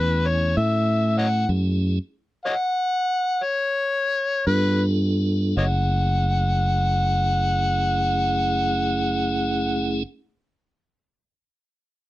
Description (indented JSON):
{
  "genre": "slow blues",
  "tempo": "52-66 BPM (dotted quarters)",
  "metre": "12/8",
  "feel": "straight",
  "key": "F# minor",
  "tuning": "A4 = 438 Hz",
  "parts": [
    { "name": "overdriven harmonica", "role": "melody", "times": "0.0-10.0 s", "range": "B4 to F#5", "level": "-23 LUFS", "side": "left 1 dB", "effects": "none" },
    { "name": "tonewheel organ", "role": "sustained chords", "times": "0.0-10.0 s", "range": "A3 to G#5", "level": "-27 LUFS", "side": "right 2 dB", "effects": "slow rotary speaker" },
    { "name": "fingered electric bass", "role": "bass", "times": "0.0-10.0 s", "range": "F#1 to A2", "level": "-22 LUFS", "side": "equal", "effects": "none" }
  ],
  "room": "little or no reverb",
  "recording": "dry, close 1970s-style studio recording",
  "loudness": "-20 LUFS",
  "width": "side -16 dB against mid",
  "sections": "0.0-5.6 A section; 5.6-10.1 B section",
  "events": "slowing down 0.3-5.6; stop 1.5-4.5",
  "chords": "0.0 F#m7; 4.5 G7; 5.6 F#m7",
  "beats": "0.56 | 1.49 2.44 3.42 4.46 | 5.56 6.71 7.85 9.00"
}